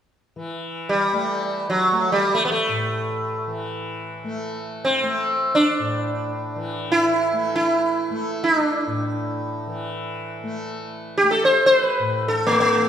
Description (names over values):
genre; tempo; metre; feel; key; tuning
indian classical; free time; none; none; A raga bhimpalasi; A4 = 440 Hz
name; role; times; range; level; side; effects
tanpura; drone; 0.4-12.9 s; A2 to A3; -30 LUFS; left 2 dB; none
sitar; melody; 0.9-12.9 s; F#3 to C5; -19 LUFS; equal; none
room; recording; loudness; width
wet recital hall reverb, RT60 1.7 s; recorded in a church or concert hall; -19 LUFS; side -9 dB against mid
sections
0.4-12.9 A section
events
none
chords
none